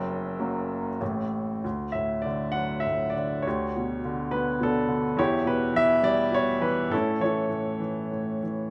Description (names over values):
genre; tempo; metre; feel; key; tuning
classical, lyrical solo piano; 102 BPM; 3/4; uneven beats, rubato; D major; A4 = 438 Hz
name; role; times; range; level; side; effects
clear baby grand piano; solo; 0.0-8.7 s; F#1 to E6; -27 LUFS; equal; none
room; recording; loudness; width
moderate recital hall reverb, RT60 1.7 s; none; -27 LUFS; mono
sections
0.0-1.6 A section; 1.6-8.7 B section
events
none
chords
0.0 F#; 1.0 N.C.; 1.6 D; 3.5 G/D; 5.2 Em; 6.9 A